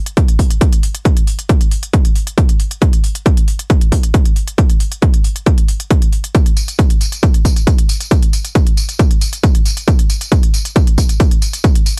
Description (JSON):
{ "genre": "techno", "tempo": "136 BPM", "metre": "4/4", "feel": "straight", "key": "none", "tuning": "none", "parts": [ { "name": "electronic hi-hat and tambourine", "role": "drums", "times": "0.1-12.0 s", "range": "none", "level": "-26 LUFS", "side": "equal", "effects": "none" }, { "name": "electronic kick drum", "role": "drums", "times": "0.2-11.7 s", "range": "none", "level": "-14 LUFS", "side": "equal", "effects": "none" } ], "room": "little or no reverb", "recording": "none", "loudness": "-14 LUFS", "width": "mono", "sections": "0.0-12.0 A section", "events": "none", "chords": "none" }